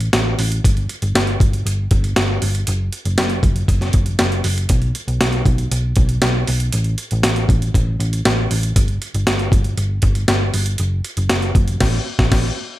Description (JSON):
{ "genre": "piano-driven pop", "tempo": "118 BPM", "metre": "4/4", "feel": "straight", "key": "unclear", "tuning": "A4 = 440 Hz", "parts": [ { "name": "hollow-body short-scale picked electric bass", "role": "bass", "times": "0.0-12.5 s", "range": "F#1 to B1", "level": "-19 LUFS", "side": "equal", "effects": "none" }, { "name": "breakbeat sampler-style drum kit", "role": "drums", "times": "0.0-12.5 s", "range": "crash cymbal, hi-hat, kick drum, snare drum", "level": "-17 LUFS", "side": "equal", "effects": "none" } ], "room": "little or no reverb", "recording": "none", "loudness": "-15 LUFS", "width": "side -15 dB against mid", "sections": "0.0-12.8 A section", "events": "band accent 11.8-12.8", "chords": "none", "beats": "0.13 | 0.64 1.15 1.66 2.16 | 2.67 3.18 3.69 4.19 | 4.70 5.21 5.71 6.22 | 6.73 7.24 7.75 8.25 | 8.76 9.27 9.78 10.28 | 10.79 11.30 11.81 12.32" }